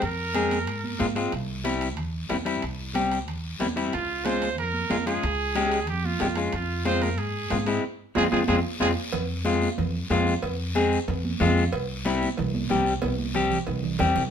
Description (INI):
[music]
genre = latin, cumbia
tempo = 185 BPM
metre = 4/4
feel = straight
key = F harmonic minor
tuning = A4 = 438 Hz
[part]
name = brilliant trumpet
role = second line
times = 0.0-1.1, 3.9-8.9 s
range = F4 to C5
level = -29 LUFS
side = right 5 dB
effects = none
[part]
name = clean electric guitar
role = accompaniment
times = 0.0-14.2 s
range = G3 to Ab4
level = -25 LUFS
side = left 3 dB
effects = none
[part]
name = upright bass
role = bass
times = 0.0-14.3 s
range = C2 to Ab2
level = -30 LUFS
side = equal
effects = none
[part]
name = congas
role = percussion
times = 0.0-14.2 s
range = none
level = -32 LUFS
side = right 6 dB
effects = none
[part]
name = guiro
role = percussion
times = 0.0-14.3 s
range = none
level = -39 LUFS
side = left 4 dB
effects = none
[part]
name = timbales and cowbell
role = percussion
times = 0.0-14.2 s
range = none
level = -36 LUFS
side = right 5 dB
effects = none
[sound]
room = moderate studio reverb, RT60 0.7 s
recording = minimal, uncompressed stereo recording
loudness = -23 LUFS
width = side -8 dB against mid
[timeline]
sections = 0.0-9.1 A section; 9.1-14.3 B section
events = trumpet solo 0.0-9.1; band accent 7.8-9.1; drum fill 8.3-9.1, 13.0-14.3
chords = 0.0 Fm; 1.3 C; 3.9 Db; 6.5 Fm; 11.7 C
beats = | 0.02 0.34 0.67 1.00 | 1.32 1.65 1.98 2.30 | 2.63 2.95 3.28 3.60 | 3.93 4.25 4.58 4.91 | 5.23 5.55 5.88 6.21 | 6.53 6.86 7.18 7.51 | 7.83 8.16 8.48 8.81 | 9.13 9.46 9.78 10.11 | 10.43 10.75 11.08 11.40 | 11.73 12.05 12.38 12.70 | 13.02 13.35 13.67 14.00